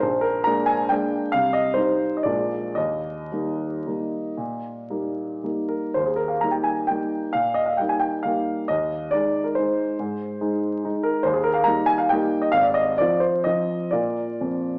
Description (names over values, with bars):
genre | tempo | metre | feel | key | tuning
classical, piano waltz | 109-154 BPM | 3/4 | rubato | Eb major | A4 = 440 Hz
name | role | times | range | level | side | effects
warm grand piano | solo | 0.0-14.8 s | Ab1 to Bb5 | -23 LUFS | equal | none
room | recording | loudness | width
moderate recital hall reverb, RT60 1.6 s | worn, warbling old tape, cassette tape, vinyl crackle, warbly pitch drift, small speaker sound | -23 LUFS | mono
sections
0.0-6.0 A section; 6.0-14.8 A section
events
none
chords
0.0 Bb7; 1.3 Cm; 2.2 Bb7; 2.8 Eb; 8.7 Ab/Eb; 11.3 Eb; 12.5 Fm/Ab; 13.9 Bb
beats
| 0.03 0.46 0.91 | 1.34 1.77 2.25 | 2.77 3.31 3.86 | 4.38 4.90 5.44 | 5.96 6.42 6.89 | 7.34 7.79 8.25 | 8.70 9.12 9.57 | 9.99 10.41 10.85 | 11.26 11.66 12.10 | 12.54 12.99 13.45 | 13.93 14.40